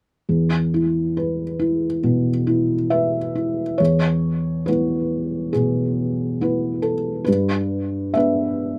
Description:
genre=classical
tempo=69 BPM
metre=4/4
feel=rubato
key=E major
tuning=A4 = 440 Hz
part: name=felt-muted upright piano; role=accompaniment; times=0.3-8.8 s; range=E2 to E5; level=-21 LUFS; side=equal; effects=none
room=light reverb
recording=recorded outdoors, with no room sound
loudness=-21 LUFS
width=mono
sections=0.3-3.8 A section; 3.8-8.8 B section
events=none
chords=0.3 E5; 7.3 G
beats=| 0.29 1.16 2.02 2.90 | 3.79 4.67 5.54 6.40 | 7.27 8.17

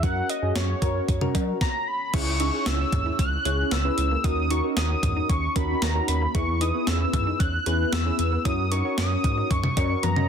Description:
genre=synth-pop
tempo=114 BPM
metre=4/4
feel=straight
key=C# dorian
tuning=A4 = 441 Hz
part: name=octave-doubled lead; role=melody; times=0.0-10.3 s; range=C#5 to F#6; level=-28 LUFS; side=equal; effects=chorus, ping-pong delay
part: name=soft electric-piano-like synth keys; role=accompaniment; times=0.0-10.3 s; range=B3 to E5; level=-29 LUFS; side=equal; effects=chorus, phaser
part: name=round analog bass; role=bass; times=0.0-10.3 s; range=C#2 to F#3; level=-27 LUFS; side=equal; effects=none
part: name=clean 12-bit digital drum machine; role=drums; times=0.0-10.3 s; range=cowbell, crash cymbal, hi-hat, kick drum, snare drum, toms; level=-27 LUFS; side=equal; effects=overdrive
part: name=resonant blip pluck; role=arpeggios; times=2.1-10.3 s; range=A#3 to F#4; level=-34 LUFS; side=right 2 dB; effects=chorus, ping-pong delay
room=light reverb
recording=dense, heavily limited modern master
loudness=-22 LUFS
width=side -7 dB against mid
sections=0.0-2.1 A section; 2.1-10.3 B section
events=drum fill 10.0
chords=0.0 F#; 2.1 C#m; 4.2 D#m7; 6.3 E; 8.5 F#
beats=| 0.03 0.56 1.08 1.61 | 2.14 2.66 3.19 3.72 | 4.24 4.77 5.29 5.82 | 6.35 6.87 7.40 7.93 | 8.45 8.98 9.51 10.03

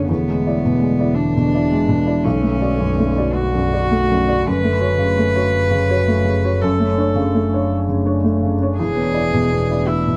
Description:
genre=neoclassical piano and strings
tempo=56 BPM (dotted quarters)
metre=6/8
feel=rubato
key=unclear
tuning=A4 = 440 Hz
part: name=rich cello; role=second line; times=0.0-10.2 s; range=B3 to B4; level=-23 LUFS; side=equal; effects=none
part: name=felt-muted upright piano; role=accompaniment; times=0.0-10.2 s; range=B1 to D5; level=-21 LUFS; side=equal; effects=none
part: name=deep dark ambient pad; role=sustained chords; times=0.0-10.2 s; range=D3 to C#5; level=-29 LUFS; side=equal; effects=chorus, built-in reverb
part: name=dark double bass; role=bass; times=0.0-10.2 s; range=E1 to B1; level=-24 LUFS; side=equal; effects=none
room=light reverb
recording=dark, warm production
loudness=-18 LUFS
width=mono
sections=0.0-10.2 A section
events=none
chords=0.1 E7; 2.2 Bm7; 4.5 F#m; 6.6 Dmaj7/F#; 8.8 E7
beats=| 0.09 1.17 | 2.25 3.36 | 4.47 5.55 | 6.63 7.70 | 8.79 9.89

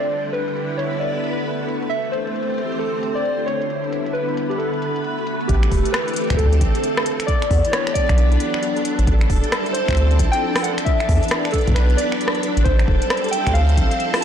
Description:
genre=IDM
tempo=134 BPM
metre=4/4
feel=swing 62% on 16ths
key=A minor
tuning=A4 = 440 Hz
part: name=warbly lo-fi synth keys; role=melody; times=0.0-14.2 s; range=G4 to A5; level=-24 LUFS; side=equal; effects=chorus, digital delay
part: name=soft string machine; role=sustained chords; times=0.0-14.2 s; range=D3 to C5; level=-24 LUFS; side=equal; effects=ensemble chorus
part: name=organic electronic drum kit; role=drums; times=0.0-14.2 s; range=finger snaps, hi-hat, rim click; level=-25 LUFS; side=equal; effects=low-pass filter on hats, soft clipping on snare, low-pass filter on snare, low-pass filter on room
part: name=round analog bass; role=bass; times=5.5-13.9 s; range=E1 to E2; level=-17 LUFS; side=equal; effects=tube saturation
part: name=electronic kick drum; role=drums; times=5.5-13.9 s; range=none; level=-21 LUFS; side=equal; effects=none
part: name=flickering grainy texture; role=texture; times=6.2-14.2 s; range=D4 to A4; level=-30 LUFS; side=left 2 dB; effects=built-in reverb
room=light reverb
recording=blown-out, overdriven recording, overdrive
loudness=-17 LUFS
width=side -8 dB against mid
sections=0.0-5.5 A section; 5.5-14.2 B section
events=none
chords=0.0 Em7; 1.0 Bm7; 1.9 Am7; 2.8 Dm7; 3.5 Em7; 4.6 Bm7; 5.5 Am7; 6.4 Dm7; 7.1 Em7; 8.2 Bm7; 9.1 Am7; 10.0 Dm7; 10.6 Em7; 11.8 Bm7; 12.7 Am7; 13.6 Dm7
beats=| 0.12 0.57 1.01 1.46 | 1.91 2.36 2.81 3.25 | 3.70 4.15 4.60 5.04 | 5.49 5.94 6.39 6.83 | 7.28 7.73 8.18 8.63 | 9.07 9.52 9.97 10.42 | 10.87 11.31 11.76 12.21 | 12.66 13.10 13.55 14.00

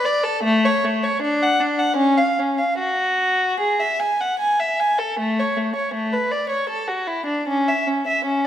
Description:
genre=classical, baroque-style suite movement for unaccompanied violin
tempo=77 BPM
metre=3/4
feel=uneven beats, rubato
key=A major from 5.2 s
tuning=A4 = 440 Hz
part: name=rich violin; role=solo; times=0.0-8.5 s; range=A3 to G#5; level=-18 LUFS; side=equal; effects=none
room=wet scoring stage reverb, RT60 1.5 s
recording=none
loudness=-18 LUFS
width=side -11 dB against mid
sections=0.0-5.2 A section; 5.2-8.5 A section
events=none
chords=none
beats=| 0.43 1.21 1.98 | 2.77 3.59 4.39 | 5.19 5.95 6.70 | 7.48 8.25

